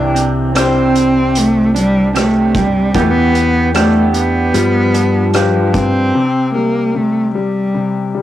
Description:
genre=acoustic folk-pop ballad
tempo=75 BPM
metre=4/4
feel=straight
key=C major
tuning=A4 = 440 Hz
part: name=rich cello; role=melody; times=0.0-8.1 s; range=F3 to D4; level=-14 LUFS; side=equal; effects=cassette tape
part: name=bright concert grand piano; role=accompaniment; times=0.0-8.2 s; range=C3 to B4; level=-19 LUFS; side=left 7 dB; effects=cassette tape
part: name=electric guitar through a small old amp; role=arpeggios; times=0.0-6.2 s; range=E3 to G4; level=-18 LUFS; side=right 7 dB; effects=tremolo, cassette tape
part: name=fingered electric bass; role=bass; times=0.0-6.1 s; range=C2 to G2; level=-19 LUFS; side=equal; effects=none
part: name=loose indie drum kit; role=drums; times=0.2-5.9 s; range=hi-hat, kick drum, rim click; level=-20 LUFS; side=equal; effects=cassette tape
room=moderate booth ambience, RT60 0.2 s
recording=home recording on cassette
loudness=-11 LUFS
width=side -12 dB against mid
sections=0.0-6.1 A section; 6.1-8.2 B section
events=none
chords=0.0 Cadd9; 2.9 Em7; 4.5 G7; 6.1 C5

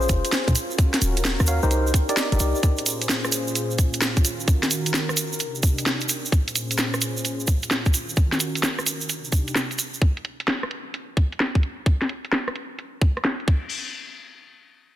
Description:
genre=UK garage, two-step garage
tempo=130 BPM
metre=4/4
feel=swing 66% on 16ths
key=Bb dorian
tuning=A4 = 438 Hz
part: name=warm analog pad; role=sustained chords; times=0.0-10.0 s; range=Bb2 to C5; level=-30 LUFS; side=equal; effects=chorus, sidechain pumping
part: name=percussive organ stab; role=stabs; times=0.0-2.6 s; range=Db4 to F5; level=-27 LUFS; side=equal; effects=chorus, digital delay
part: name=short 808-style bass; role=bass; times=0.0-2.5 s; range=Eb1 to Bb2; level=-22 LUFS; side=equal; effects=none
part: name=egg shaker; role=percussion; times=0.0-10.0 s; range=none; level=-28 LUFS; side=right 4 dB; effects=none
part: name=electronic kick drum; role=drums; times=0.1-13.6 s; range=none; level=-19 LUFS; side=equal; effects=overdrive, studio reverb
part: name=garage drum kit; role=drums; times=0.1-13.6 s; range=crash cymbal, hi-hat, rim click, snare drum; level=-25 LUFS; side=equal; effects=overdrive, low-pass filter on hats, studio reverb, low-pass filter on snare, low-pass filter on cymbals
room=light reverb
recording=dense, heavily limited modern master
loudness=-20 LUFS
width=side -13 dB against mid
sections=0.0-13.7 A section; 13.7-15.0 B section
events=filter sweep on drum 0.0-13.7; filter sweep on analog synth pad 0.0-10.0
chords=0.0 Bbm7; 0.6 Ebm7; 1.7 Cm7; 2.6 Bbm7; 4.2 Ebm7; 5.4 Cm7; 6.3 Bbm7; 7.9 Ebm7; 9.1 Cm7; 10.0 N.C.

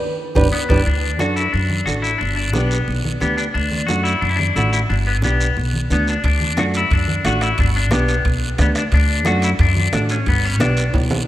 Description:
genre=latin, cumbia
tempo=179 BPM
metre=4/4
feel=straight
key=D major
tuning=A4 = 437 Hz
part: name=congas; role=percussion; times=0.3-11.2 s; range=none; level=-28 LUFS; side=equal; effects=none
part: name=nylon-string guitar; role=accompaniment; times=0.4-10.8 s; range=A3 to B4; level=-24 LUFS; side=right 2 dB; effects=none
part: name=upright bass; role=bass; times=0.4-11.2 s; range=G1 to F#2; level=-19 LUFS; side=equal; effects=none
part: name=bombo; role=percussion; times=0.4-0.8, 6.2-11.1 s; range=none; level=-21 LUFS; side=equal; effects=none
part: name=guiro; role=percussion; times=0.4-11.3 s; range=none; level=-30 LUFS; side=right 2 dB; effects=none
part: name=timbales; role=percussion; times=0.4-0.8, 6.2-11.2 s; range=none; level=-31 LUFS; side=right 4 dB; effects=none
part: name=clean electric guitar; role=melody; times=0.5-10.9 s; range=B3 to F#4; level=-21 LUFS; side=left 3 dB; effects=spring reverb, slapback echo
room=moderate lush hall reverb, RT60 2.6 s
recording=rough home demo mix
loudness=-15 LUFS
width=side -14 dB against mid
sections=0.9-11.3 A section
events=nylon-string guitar fill 0.0-0.9; band accent 0.0-0.9; drum fill 0.0-0.9, 10.9-11.3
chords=0.0 G; 0.9 D; 2.2 G; 3.6 D; 4.9 G; 6.2 D; 7.6 G; 8.9 D; 10.3 G

